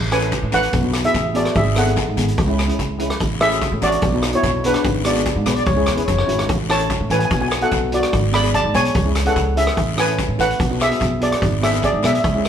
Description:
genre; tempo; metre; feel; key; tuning
calypso; 146 BPM; 4/4; straight; unclear; A4 = 440 Hz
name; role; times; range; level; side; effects
upright bass; bass; 0.0-12.5 s; E1 to A2; -22 LUFS; right 1 dB; none
steel pan; melody; 0.1-12.5 s; D4 to B5; -20 LUFS; right 1 dB; none
steel pan; accompaniment; 0.1-12.5 s; G#3 to B4; -24 LUFS; left 2 dB; none
street-band drum kit; drums; 0.1-12.5 s; hi-hat, kick drum, rim click; -23 LUFS; equal; none
guiro; percussion; 0.3-12.5 s; none; -30 LUFS; left 4 dB; none
dark trumpet; second line; 5.4-6.5 s; B4 to D5; -23 LUFS; left 3 dB; none
room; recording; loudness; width
wet studio reverb, RT60 0.8 s; band playing live in one room; -16 LUFS; side -8 dB against mid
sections
0.0-12.5 A section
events
none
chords
0.0 Amaj7; 0.7 Bm; 1.6 G#dim; 2.4 C#m; 3.2 Amaj7; 4.0 Bm; 4.8 G#dim; 5.7 C#m; 6.5 A; 7.3 Bm; 8.1 G#dim; 9.0 C#m; 9.8 Amaj7; 10.6 Bm; 11.4 G#dim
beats
0.32 0.73 1.14 | 1.55 1.97 2.38 2.79 | 3.20 3.61 4.02 4.43 | 4.84 5.26 5.67 6.08 | 6.49 6.90 7.31 7.72 | 8.13 8.54 8.95 9.37 | 9.78 10.19 10.60 11.01 | 11.42 11.83 12.24

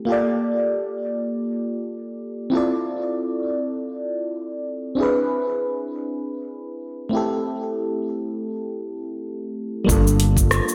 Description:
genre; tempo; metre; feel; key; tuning
sunset chillout; free time; none; none; G dorian; A4 = 440 Hz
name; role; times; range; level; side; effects
mellow FM electric piano; accompaniment; 0.0-10.7 s; G3 to D5; -25 LUFS; equal; chorus, phaser, delay
mellow fretless electric bass; bass; 9.9-10.6 s; G1; -21 LUFS; equal; none
deep house drum kit; drums; 9.9-10.7 s; cabasa, hi-hat, rim click; -24 LUFS; equal; gated reverb
electronic kick drum; drums; 9.9-10.5 s; none; -22 LUFS; equal; none
room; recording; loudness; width
wet lush hall reverb, RT60 1.6 s; bright 1980s-style digital production; -24 LUFS; mono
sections
0.0-9.9 A section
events
none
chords
0.1 Gm9; 2.5 Dm9; 5.0 E7b13; 7.1 Am7; 9.9 Gm9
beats
free time

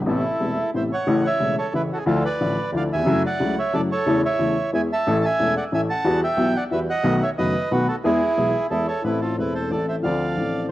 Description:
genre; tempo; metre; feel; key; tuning
tango; 181 BPM; 3/4; rubato; A major; A4 = 440 Hz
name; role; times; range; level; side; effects
warm upright piano; accompaniment; 0.0-10.7 s; E1 to A4; -22 LUFS; left 1 dB; cassette tape
bandoneon; melody; 0.1-10.7 s; E4 to A5; -23 LUFS; right 2 dB; cassette tape
room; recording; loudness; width
light reverb; home recording on cassette; -19 LUFS; side -15 dB against mid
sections
0.0-1.1 A section; 1.1-9.0 B section; 9.0-10.7 A section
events
none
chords
0.1 Amadd9; 1.1 A; 2.1 Dmadd9; 3.1 F#m7; 4.1 A/E; 4.7 E; 5.1 A; 6.1 Emadd9; 7.0 B7; 8.0 E; 9.0 Am; 10.0 Dm7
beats
| 0.07 0.40 0.74 | 1.07 1.41 1.74 | 2.07 2.40 2.73 | 3.07 3.40 3.73 | 4.06 4.39 4.72 | 5.06 5.39 5.72 | 6.05 6.39 6.72 | 7.05 7.38 7.71 | 8.04 8.37 8.70 | 9.04 9.37 9.70 | 10.03 10.36 10.69

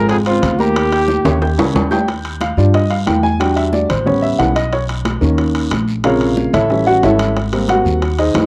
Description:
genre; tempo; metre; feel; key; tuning
Afro-Cuban jazz; 182 BPM; 4/4; straight; unclear; A4 = 440 Hz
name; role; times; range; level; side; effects
warm trumpet; melody; 0.0-1.7 s; F4 to Ab4; -20 LUFS; equal; cassette tape, plate reverb
mellow baritone saxophone; second line; 0.0-1.7 s; Db2 to F2; -25 LUFS; equal; none
warm grand piano; accompaniment; 0.0-8.5 s; C3 to G6; -18 LUFS; equal; plate reverb
upright bass; bass; 0.0-8.5 s; Ab1 to G2; -21 LUFS; equal; none
bongos; percussion; 0.1-8.5 s; none; -29 LUFS; equal; none
congas; percussion; 0.1-8.5 s; none; -26 LUFS; equal; none
guiro; percussion; 0.1-8.5 s; none; -38 LUFS; equal; none
timbales; percussion; 0.1-8.5 s; none; -24 LUFS; equal; none
room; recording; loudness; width
moderate small room reverb, RT60 0.5 s; home recording on cassette; -15 LUFS; mono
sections
0.0-2.1 A section; 2.1-8.5 B section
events
drum fill 1.3-2.1; grand piano solo 2.1-8.5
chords
0.0 Dbmaj9; 0.8 Eb7; 2.1 Ebmaj9; 3.4 Em7; 4.1 A9; 4.7 Bmaj7; 6.0 Bbm7; 6.7 A7; 7.4 Abmaj7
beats
0.10 0.43 | 0.76 1.09 1.42 1.75 | 2.08 2.41 2.74 3.07 | 3.40 3.73 4.06 4.39 | 4.72 5.05 5.38 5.71 | 6.04 6.37 6.70 7.03 | 7.36 7.69 8.02 8.35

